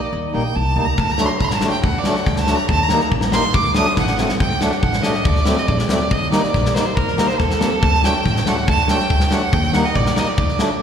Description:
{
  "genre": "klezmer",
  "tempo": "140 BPM",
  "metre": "2/4",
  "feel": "straight",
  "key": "D phrygian dominant",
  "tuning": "A4 = 439 Hz",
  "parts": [
    { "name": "clear violin", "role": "melody", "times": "0.0-10.8 s", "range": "A4 to Eb6", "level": "-21 LUFS", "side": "right 3 dB", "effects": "none" },
    { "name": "upright bass", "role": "bass", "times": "0.1-10.6 s", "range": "A1 to Eb2", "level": "-22 LUFS", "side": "equal", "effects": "none" },
    { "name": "accordion", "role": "accompaniment", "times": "0.3-10.7 s", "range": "F#3 to Eb4", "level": "-22 LUFS", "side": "left 1 dB", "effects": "none" },
    { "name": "gated 80s drum kit", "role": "drums", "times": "1.0-10.7 s", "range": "kick drum, snare drum", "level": "-20 LUFS", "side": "left 1 dB", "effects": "none" }
  ],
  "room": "wet church reverb, RT60 2.7 s",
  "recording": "recorded in a church or concert hall",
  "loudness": "-15 LUFS",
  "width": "side -8 dB against mid",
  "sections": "0.0-4.4 A section; 4.4-10.8 B section",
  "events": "violin solo 0.0-4.4; drum fill 4.0-4.4",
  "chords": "0.0 Eb; 1.0 D; 2.7 Eb; 3.5 D; 6.1 Eb; 7.8 D; 9.5 Eb"
}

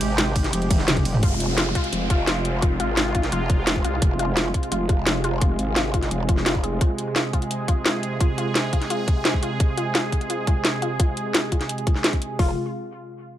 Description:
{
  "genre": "dark technical drum and bass",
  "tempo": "172 BPM",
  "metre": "4/4",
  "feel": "straight",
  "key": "F minor",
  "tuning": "A4 = 440 Hz",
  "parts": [
    { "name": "sweeping resonant pad", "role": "sustained chords", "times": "0.0-12.6 s", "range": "C3 to Ab4", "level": "-27 LUFS", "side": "right 1 dB", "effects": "chorus, sidechain pumping" },
    { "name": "growl bass", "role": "bass", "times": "0.0-6.8, 12.4-12.6 s", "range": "F1 to C2", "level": "-26 LUFS", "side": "equal", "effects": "chorus, overdrive" },
    { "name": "drum and bass drum kit", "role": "drums", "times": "0.0-12.3 s", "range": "hi-hat, ride cymbal, snare drum, toms", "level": "-23 LUFS", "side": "equal", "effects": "none" },
    { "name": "drum and bass drum kit", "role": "drums", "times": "0.4-12.5 s", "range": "hi-hat, kick drum", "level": "-21 LUFS", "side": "equal", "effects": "none" },
    { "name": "wide unison pluck", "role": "arpeggios", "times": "1.2-12.6 s", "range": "F4 to Ab4", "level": "-30 LUFS", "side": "left 2 dB", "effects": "sidechain pumping, dub echo" },
    { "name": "downlifter", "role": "sound effects", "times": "1.2-4.0 s", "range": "none", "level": "-32 LUFS", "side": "equal", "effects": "none" }
  ],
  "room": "light reverb, digital ambience",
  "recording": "none",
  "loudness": "-20 LUFS",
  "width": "side -12 dB against mid",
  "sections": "0.0-1.2 A section; 1.2-12.4 B section",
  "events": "drop 0.0-1.2; drum fill 0.7-1.2; filter sweep on synth arpeggio sound 1.2-12.4",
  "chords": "0.0 Fm"
}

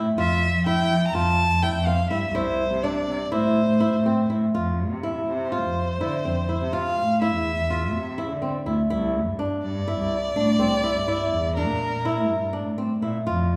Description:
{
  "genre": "contemporary instrumental, chamber music in an uneven meter",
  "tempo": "248 BPM (eighths)",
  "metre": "9/8",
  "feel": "straight",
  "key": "F major",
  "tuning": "A4 = 438 Hz",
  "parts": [
    { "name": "flamenco guitar", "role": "arpeggios", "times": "0.0-13.6 s", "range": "C4 to F4", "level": "-29 LUFS", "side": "equal", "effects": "none" },
    { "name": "warm cello", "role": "bass", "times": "0.0-13.6 s", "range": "C2 to F3", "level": "-27 LUFS", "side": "equal", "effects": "none" },
    { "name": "clear violin", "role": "melody", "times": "0.2-12.5 s", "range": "Bb4 to Bb5", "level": "-29 LUFS", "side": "equal", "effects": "none" }
  ],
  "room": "wet recital hall reverb, RT60 1.5 s",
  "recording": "recorded in a church or concert hall",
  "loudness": "-24 LUFS",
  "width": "mono",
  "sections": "0.0-4.5 A section; 4.5-13.6 B section",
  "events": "none",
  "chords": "0.2 Fmaj7; 2.3 C; 3.3 Am; 4.5 Fmaj7(no3); 8.9 C7"
}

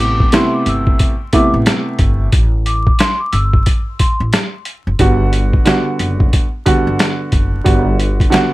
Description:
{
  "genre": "hip hop, boom-bap hip-hop",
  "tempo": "90 BPM",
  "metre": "4/4",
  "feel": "swing 62% on 16ths",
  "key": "A dorian",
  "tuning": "A4 = 440 Hz",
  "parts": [
    { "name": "vibraphone with soft mallets", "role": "melody", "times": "0.0-4.2 s", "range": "C6 to E6", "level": "-20 LUFS", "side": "left 1 dB", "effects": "high-pass filter, low-pass filter, ping-pong delay" },
    { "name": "dark upright piano", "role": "accompaniment", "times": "0.0-8.5 s", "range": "C3 to F#4", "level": "-16 LUFS", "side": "right 2 dB", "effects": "cassette tape, high-pass filter, low-pass filter" },
    { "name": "upright bass", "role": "bass", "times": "0.0-8.2 s", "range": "F#1 to A1", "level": "-17 LUFS", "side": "equal", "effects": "none" },
    { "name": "boom bap sampler-style drum kit", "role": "drums", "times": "0.2-8.5 s", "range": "hi-hat, kick drum, snare drum", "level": "-14 LUFS", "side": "equal", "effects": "none" }
  ],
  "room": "little or no reverb",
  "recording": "vinyl crackle",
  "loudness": "-12 LUFS",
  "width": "side -18 dB against mid",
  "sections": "0.0-8.5 A section",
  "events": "none",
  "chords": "0.0 Amadd9; 5.0 Gmaj7"
}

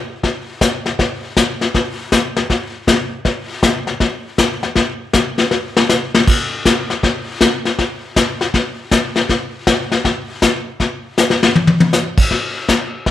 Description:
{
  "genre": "country",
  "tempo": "159 BPM",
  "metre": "4/4",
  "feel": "swing 65% on 8ths",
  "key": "none",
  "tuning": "none",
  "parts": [
    { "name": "vintage brush drum kit", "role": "drums", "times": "0.2-13.1 s", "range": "brushed snare drum, crash cymbal, hi-hat, kick drum, snare drum, toms", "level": "-14 LUFS", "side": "left 2 dB", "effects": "none" }
  ],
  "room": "moderate plate reverb, RT60 1.0 s",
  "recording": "1960s-style stereo",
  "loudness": "-14 LUFS",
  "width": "side -12 dB against mid",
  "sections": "0.0-12.3 A section",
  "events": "drum fill 5.5-6.3, 11.2-11.9",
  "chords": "none"
}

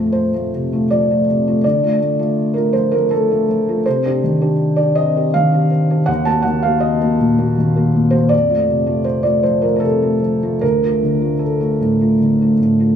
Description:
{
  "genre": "neoclassical minimalist piano",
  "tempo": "80 BPM",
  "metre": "3/4",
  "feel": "rubato",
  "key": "unclear",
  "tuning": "A4 = 440 Hz",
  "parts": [
    { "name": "felt-muted upright piano", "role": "solo", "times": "0.0-13.0 s", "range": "D2 to A5", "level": "-14 LUFS", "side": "equal", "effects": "none" }
  ],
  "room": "moderate concert hall reverb, RT60 2.0 s",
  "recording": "small room ambience",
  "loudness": "-14 LUFS",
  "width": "side -8 dB against mid",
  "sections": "0.0-13.0 A section",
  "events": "none",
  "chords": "0.0 F; 1.6 Dm; 3.9 Cmadd9; 6.1 Ebm; 8.3 F; 10.6 Dm"
}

